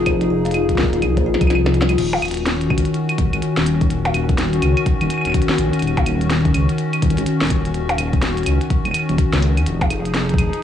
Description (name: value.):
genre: IDM.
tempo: 125 BPM.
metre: 4/4.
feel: swing 62% on 16ths.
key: Eb dorian.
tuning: A4 = 441 Hz.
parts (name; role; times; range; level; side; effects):
hollow soft pad; sustained chords; 0.0-10.6 s; Eb3 to Ab4; -21 LUFS; left 1 dB; chorus, vintage 12-bit sampler grit.
kalimba; arpeggios; 0.0-2.0 s; C4 to F5; -22 LUFS; left 3 dB; analog delay.
dark detuned saw bass; bass; 0.0-10.5 s; Eb1 to Eb2; -20 LUFS; left 1 dB; tube saturation.
electronic kick drum; drums; 0.1-10.4 s; none; -20 LUFS; equal; studio reverb.
glitchy drum kit; drums; 0.1-10.6 s; claves, crash cymbal, hi-hat, percussion blips, snare drum; -23 LUFS; right 1 dB; studio reverb, analog delay.
room: light reverb, digital ambience.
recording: dry, gritty hardware recording, cassette tape.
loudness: -16 LUFS.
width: side -10 dB against mid.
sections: 0.0-2.0 A section; 2.0-10.6 B section.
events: drum fill 1.0-2.0.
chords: 0.0 Fm7; 2.0 Ebm7; 9.7 Fm7.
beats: | 0.06 0.54 1.02 1.50 | 1.98 2.46 2.94 3.42 | 3.90 4.38 4.86 5.34 | 5.82 6.30 6.78 7.26 | 7.74 8.22 8.70 9.18 | 9.66 10.14 10.62.